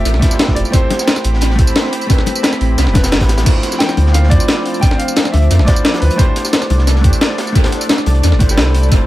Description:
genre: liquid drum and bass.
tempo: 176 BPM.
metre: 4/4.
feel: straight.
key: D dorian.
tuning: A4 = 440 Hz.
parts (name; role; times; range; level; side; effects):
bright baby grand piano; melody; 0.0-7.5 s; B4 to G5; -23 LUFS; equal; dub echo.
hollow-body jazz guitar; accompaniment; 0.0-9.1 s; A3 to C5; -21 LUFS; equal; analog delay.
lush unison pad; sustained chords; 0.0-9.1 s; F3 to B5; -23 LUFS; equal; chorus, phaser, sidechain pumping.
sub bass with octave; bass; 0.0-9.1 s; E1 to F2; -12 LUFS; equal; tube saturation.
breakbeat sampler-style drum kit; drums; 0.1-9.0 s; crash cymbal, hi-hat, snare drum, tambourine; -17 LUFS; equal; analog delay.
crunchy breakbeat drum kit; drums; 0.1-9.0 s; hi-hat, snare drum; -25 LUFS; equal; high-pass filter on hats, high-pass filter on snare, high-pass filter on room, analog delay.
electronic kick drum; drums; 0.2-9.0 s; none; -13 LUFS; equal; none.
bongos; percussion; 0.9-8.1 s; none; -22 LUFS; left 6 dB; none.
room: light reverb, small room ambience.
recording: echo-heavy mix.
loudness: -10 LUFS.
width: side -16 dB against mid.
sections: 0.0-3.5 A section; 3.5-9.1 A section.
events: drop 0.0-3.5, 3.5-9.1.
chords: 0.0 Fmaj7; 0.7 Am9; 3.5 Dm9; 6.2 C69.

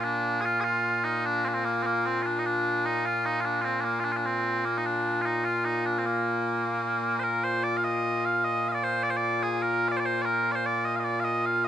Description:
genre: scottish traditional, Scottish pipe music.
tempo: 100 BPM (dotted quarters).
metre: 6/8.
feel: straight.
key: Bb major.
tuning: A4 = 442 Hz.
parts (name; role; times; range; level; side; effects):
mellow small bagpipes; solo; 0.0-11.7 s; Bb2 to F5; -24 LUFS; equal; none.
room: moderate huge ambient reverb, RT60 4.3 s.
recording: none.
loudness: -25 LUFS.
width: side -10 dB against mid.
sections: 0.0-7.2 A section; 7.2-11.7 B section.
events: none.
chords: none.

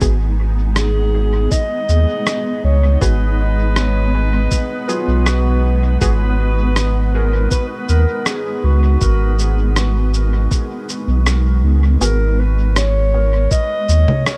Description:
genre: ambient dub.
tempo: 80 BPM.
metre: 4/4.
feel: straight.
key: G# minor.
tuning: A4 = 443 Hz.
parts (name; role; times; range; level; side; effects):
granular cloud pad; sustained chords; 0.0-14.4 s; G#3 to G#5; -28 LUFS; equal; built-in reverb.
filtered dub chord stab; stabs; 0.0-6.2, 12.0-12.2 s; F#3 to G#4; -32 LUFS; equal; none.
warm sub bass; bass; 0.0-14.1 s; G#1 to D#2; -17 LUFS; equal; none.
electronic kick drum; drums; 0.0-13.7 s; none; -20 LUFS; equal; small room ambience.
electronic shaker, rim click and congas; drums; 0.0-14.4 s; none; -24 LUFS; equal; small room ambience, dub echo.
backwards swelling texture; texture; 1.8-12.0 s; B3; -32 LUFS; equal; built-in reverb.
dark clarinet; melody; 0.8-14.4 s; E#4 to D#5; -25 LUFS; equal; dub echo.
room: digital ambience.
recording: none.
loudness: -16 LUFS.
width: mono.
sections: 0.0-12.0 A section; 12.0-14.4 B section.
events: none.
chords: 0.0 G#m7.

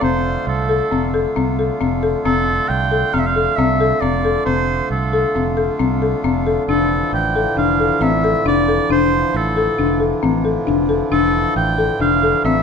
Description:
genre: contemporary instrumental, chamber music in an uneven meter.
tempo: 135 BPM.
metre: 5/4.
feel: straight.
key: F major.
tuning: A4 = 435 Hz.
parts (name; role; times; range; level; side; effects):
clear oboe; melody; 0.0-12.6 s; A4 to G5; -19 LUFS; right 3 dB; none.
pedal harmonium; sustained chords; 0.0-12.6 s; D3 to F4; -25 LUFS; right 2 dB; none.
folk marimba with medium mallets; arpeggios; 0.0-12.6 s; C4 to A4; -18 LUFS; left 6 dB; none.
fretless electric bass; bass; 0.0-12.6 s; F1 to C2; -22 LUFS; right 3 dB; none.
room: moderate recital hall reverb, RT60 1.3 s.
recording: none.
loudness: -15 LUFS.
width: side -6 dB against mid.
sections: 0.0-12.6 A section.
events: none.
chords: 0.0 F6; 6.7 Dmadd9/F.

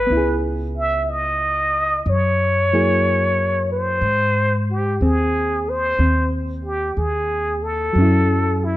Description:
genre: jazz ballad.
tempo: 61 BPM.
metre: 4/4.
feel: swing 68% on 8ths.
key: unclear.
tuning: A4 = 440 Hz.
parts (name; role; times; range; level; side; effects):
trumpet with plunger mute; melody; 0.0-8.8 s; E4 to Fb5; -20 LUFS; equal; none.
hollow-body jazz guitar; accompaniment; 0.0-8.8 s; Gb3 to Ab4; -22 LUFS; equal; none.
upright bass; bass; 0.0-8.8 s; Db2 to Ab2; -22 LUFS; equal; none.
room: light reverb.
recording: none.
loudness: -17 LUFS.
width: side -15 dB against mid.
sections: 0.0-8.8 A section.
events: none.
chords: 0.1 Dbm7; 2.0 Gb9; 4.0 Ab; 7.9 Gb5.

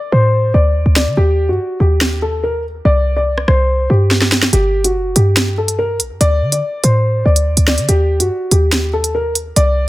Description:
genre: hip hop, drill.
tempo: 143 BPM.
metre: 4/4.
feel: half-time.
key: unclear.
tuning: A4 = 440 Hz.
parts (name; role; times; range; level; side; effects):
dark concert grand piano; melody; 0.0-9.9 s; F#4 to D5; -17 LUFS; left 1 dB; none.
short 808-style bass; bass; 0.1-9.9 s; F#1 to D3; -14 LUFS; equal; none.
drill drum kit; drums; 1.0-9.7 s; hi-hat, rim click, snare drum; -16 LUFS; right 1 dB; none.
room: little or no reverb.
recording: none.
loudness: -12 LUFS.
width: side -17 dB against mid.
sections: 0.0-9.9 A section.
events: break 0.0-4.5; drum fill 4.1-4.5.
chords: 0.0 D5; 1.2 Eb; 2.9 C5; 4.5 N.C.; 6.2 D5; 7.9 Eb.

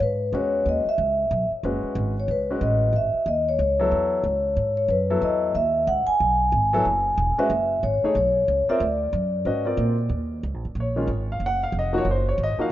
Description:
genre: modal jazz.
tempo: 184 BPM.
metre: 4/4.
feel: swing 61% on 8ths.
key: F# dorian.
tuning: A4 = 440 Hz.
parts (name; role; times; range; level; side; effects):
vibraphone with soft mallets; melody; 0.0-9.8 s; B4 to G#5; -22 LUFS; left 1 dB; none.
upright bass; bass; 0.0-12.6 s; E1 to A#2; -26 LUFS; right 1 dB; none.
clear baby grand piano; accompaniment; 0.3-12.7 s; Eb3 to Gb5; -27 LUFS; left 1 dB; none.
room: moderate plate reverb, RT60 2.8 s.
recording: rough home demo mix, nothing above 7.5 kHz.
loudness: -20 LUFS.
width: side -13 dB against mid.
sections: 0.0-10.1 A section; 10.1-12.7 B section.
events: none.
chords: 0.0 F#9sus4; 8.8 A#7; 10.1 Ebm11.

